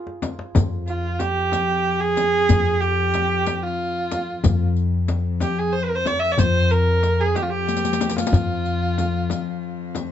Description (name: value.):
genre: Persian modal ensemble.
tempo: 62 BPM (dotted quarters).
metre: 6/8.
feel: straight.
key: F avaz esfahan.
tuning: A4 = 440 Hz.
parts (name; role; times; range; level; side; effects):
santur; second line; 0.0-2.1 s; F4 to Ab4; -40 LUFS; right 4 dB; slapback echo.
tombak; percussion; 0.1-10.1 s; none; -24 LUFS; left 2 dB; none.
frame drum; percussion; 0.2-10.1 s; none; -26 LUFS; left 2 dB; none.
riq; percussion; 0.2-10.1 s; none; -29 LUFS; left 7 dB; none.
upright bass; bass; 0.6-9.3 s; F2; -22 LUFS; left 1 dB; none.
warm studio cello section; drone; 0.6-10.1 s; F2; -28 LUFS; left 6 dB; none.
warm kamancheh; melody; 0.9-9.9 s; F4 to E5; -22 LUFS; right 3 dB; none.
room: light reverb.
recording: nothing above 7.8 kHz.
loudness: -19 LUFS.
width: side -10 dB against mid.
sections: 0.6-10.1 A section.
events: drum fill 0.0-0.6, 7.7-8.3.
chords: none.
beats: | 0.56 1.53 | 2.50 3.47 | 4.44 5.42 | 6.39 7.36 | 8.33 9.30.